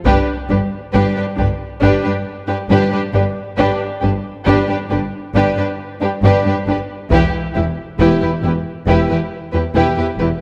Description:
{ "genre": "cinematic, epic orchestral film score", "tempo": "68 BPM", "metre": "4/4", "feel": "straight", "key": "unclear", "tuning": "A4 = 441 Hz", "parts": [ { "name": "warm symphonic violin section", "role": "melody", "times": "0.0-10.3 s", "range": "B4", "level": "-26 LUFS", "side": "equal", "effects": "none" }, { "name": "rich symphonic violin section", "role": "second line", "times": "0.1-10.3 s", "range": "G4", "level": "-25 LUFS", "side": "equal", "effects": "none" }, { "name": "warm symphonic viola section", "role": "accompaniment", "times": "0.1-10.3 s", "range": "D4 to E4", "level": "-23 LUFS", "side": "equal", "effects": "none" }, { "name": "dark symphonic double bass section", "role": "bass", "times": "0.1-10.3 s", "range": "E1 to G1", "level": "-23 LUFS", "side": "equal", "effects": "none" }, { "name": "rich symphonic cello section", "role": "bass", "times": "0.1-10.3 s", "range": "E2 to G2", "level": "-23 LUFS", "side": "equal", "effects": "none" }, { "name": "solo taiko drums", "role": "drums", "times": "0.1-1.8, 7.1-8.8 s", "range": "none", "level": "-23 LUFS", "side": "equal", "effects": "none" } ], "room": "moderate scoring stage reverb, RT60 2.0 s", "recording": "none", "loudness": "-17 LUFS", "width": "mono", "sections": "0.0-10.4 A section", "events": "build-up 0.0-10.4", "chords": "0.1 G; 7.1 Em", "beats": "| 0.06 0.94 1.82 2.70 | 3.58 4.47 5.35 6.23 | 7.11 7.99 8.87 9.75" }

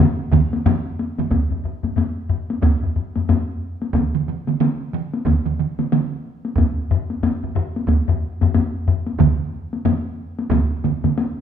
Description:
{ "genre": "japanese traditional, taiko drum ensemble", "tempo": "91 BPM", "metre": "4/4", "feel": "swing 60% on 16ths", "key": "none", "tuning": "none", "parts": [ { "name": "solo taiko drums", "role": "percussion", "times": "0.0-11.4 s", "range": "none", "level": "-23 LUFS", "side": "left 4 dB", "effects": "none" }, { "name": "taiko ensemble", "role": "percussion", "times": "0.0-11.2 s", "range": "none", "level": "-21 LUFS", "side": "left 4 dB", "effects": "none" }, { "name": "taiko ensemble", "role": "percussion", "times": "0.3-11.2 s", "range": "none", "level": "-21 LUFS", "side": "right 9 dB", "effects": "none" }, { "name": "taiko ensemble", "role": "percussion", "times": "0.3-10.7 s", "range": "none", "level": "-21 LUFS", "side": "right 3 dB", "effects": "none" } ], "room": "wet recital hall reverb, RT60 1.3 s", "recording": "minimal, uncompressed stereo recording", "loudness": "-18 LUFS", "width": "side -8 dB against mid", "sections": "0.0-1.3 A section; 1.3-11.4 B section", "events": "none", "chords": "none", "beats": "0.00 0.66 | 1.32 1.98 2.63 3.29 | 3.95 4.61 5.27 5.92 | 6.58 7.24 7.89 8.55 | 9.21 9.86 10.52 11.17" }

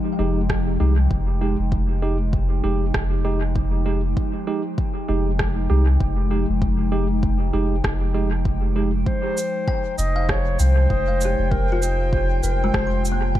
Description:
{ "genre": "ambient dub", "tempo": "98 BPM", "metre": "4/4", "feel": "swing 58% on 16ths", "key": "F minor", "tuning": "A4 = 444 Hz", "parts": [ { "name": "warbly tape-like pad", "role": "sustained chords", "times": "0.0-13.4 s", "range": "F3 to G5", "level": "-28 LUFS", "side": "left 1 dB", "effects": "chorus, built-in reverb" }, { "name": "kalimba", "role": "arpeggios", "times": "0.0-1.3, 9.7-13.4 s", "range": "Ab3 to C6", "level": "-30 LUFS", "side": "left 3 dB", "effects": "tape echo" }, { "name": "tine electric piano", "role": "stabs", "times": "0.2-8.9 s", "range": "Ab3 to G4", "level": "-27 LUFS", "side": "right 4 dB", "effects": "dub echo" }, { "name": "soft dub sub bass", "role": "bass", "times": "0.2-13.4 s", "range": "F1 to C2", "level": "-21 LUFS", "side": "equal", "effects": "none" }, { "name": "electronic kick drum", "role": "drums", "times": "0.5-13.4 s", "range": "none", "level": "-25 LUFS", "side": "equal", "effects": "overdrive" }, { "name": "electronic rim click and cabasa", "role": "drums", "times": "0.5-13.2 s", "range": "none", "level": "-31 LUFS", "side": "right 1 dB", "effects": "dub echo" }, { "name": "dark clarinet", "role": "melody", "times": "9.1-13.4 s", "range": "Bb4 to Eb5", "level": "-25 LUFS", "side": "left 1 dB", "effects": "tape echo" }, { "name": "bubbling stepped-filter texture", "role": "texture", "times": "10.7-13.4 s", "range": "G5", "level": "-31 LUFS", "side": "right 2 dB", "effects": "chorus, built-in reverb" } ], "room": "light reverb, digital ambience", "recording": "echo-heavy mix", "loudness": "-19 LUFS", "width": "side -13 dB against mid", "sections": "0.0-13.4 A section", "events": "none", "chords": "0.0 Fm9", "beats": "0.49 1.11 | 1.72 2.33 2.94 3.56 | 4.17 4.78 5.39 6.00 | 6.62 7.23 7.84 8.45 | 9.07 9.68 10.29 10.90 | 11.52 12.13 12.74 13.35" }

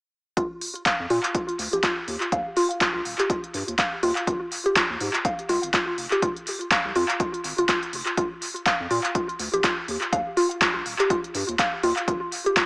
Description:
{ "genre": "deep house", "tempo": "123 BPM", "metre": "4/4", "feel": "swing 57% on 16ths", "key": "unclear", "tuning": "A4 = 439 Hz", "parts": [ { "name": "mallet-like synth pluck", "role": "arpeggios", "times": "0.4-12.7 s", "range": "F4 to F5", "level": "-25 LUFS", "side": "equal", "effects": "chorus, sidechain pumping, tape echo" }, { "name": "round analog bass", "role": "bass", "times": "0.4-12.2 s", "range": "Eb1 to Bb2", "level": "-35 LUFS", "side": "equal", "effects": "sidechain pumping" }, { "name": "deep house drum kit", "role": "drums", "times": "0.4-12.7 s", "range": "handclaps, hi-hat", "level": "-25 LUFS", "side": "equal", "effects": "tape echo" }, { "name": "electronic kick drum", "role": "drums", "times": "0.4-12.7 s", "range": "none", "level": "-29 LUFS", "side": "equal", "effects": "none" } ], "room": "moderate echo chamber reverb, RT60 1.7 s", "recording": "echo-heavy mix, small speaker sound", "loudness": "-22 LUFS", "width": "side -33 dB against mid", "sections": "0.4-12.7 A section", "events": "filter sweep on synth arpeggio sound 0.4-12.7", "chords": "0.4 Bb5; 2.1 Eb; 4.3 N.C.; 8.2 Bb5; 9.9 Eb; 12.1 Abmaj7(no3)", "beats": "| 0.37 0.86 1.35 1.83 | 2.32 2.81 3.30 3.79 | 4.27 4.76 5.25 5.74 | 6.22 6.71 7.20 7.69 | 8.18 8.66 9.15 9.64 | 10.13 10.62 11.10 11.59 | 12.08 12.57" }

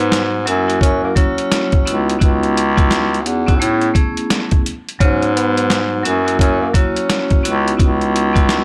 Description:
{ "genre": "hip hop, boom-bap hip-hop", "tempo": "86 BPM", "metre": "4/4", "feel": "swing 62% on 16ths", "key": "C# minor", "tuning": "A4 = 441 Hz", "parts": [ { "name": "breathy tenor saxophone", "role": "melody", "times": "0.0-7.8 s", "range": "A#3 to C#4", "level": "-25 LUFS", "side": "equal", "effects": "high-pass filter, low-pass filter, analog delay" }, { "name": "vibraphone with hard mallets", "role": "accompaniment", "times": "0.0-8.6 s", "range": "F#3 to G#4", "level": "-24 LUFS", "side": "equal", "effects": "cassette tape, high-pass filter, low-pass filter" }, { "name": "clear bass clarinet", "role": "bass", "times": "0.0-8.6 s", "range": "C#2 to A2", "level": "-19 LUFS", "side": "equal", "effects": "none" }, { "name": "boom bap sampler-style drum kit", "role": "drums", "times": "0.1-8.6 s", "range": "hi-hat, kick drum, snare drum", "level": "-18 LUFS", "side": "equal", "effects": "none" } ], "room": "small room ambience", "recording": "dry, gritty hardware recording, transformer saturation", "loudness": "-16 LUFS", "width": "mono", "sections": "0.0-8.6 A section", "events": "none", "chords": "0.5 F#7; 1.9 C#m11; 3.6 Amaj9; 5.0 G#m7; 6.0 F#7; 7.4 C#m11", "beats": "0.12 0.82 1.51 | 2.21 2.91 3.61 4.31 | 5.00 5.70 6.40 7.10 | 7.79 8.49" }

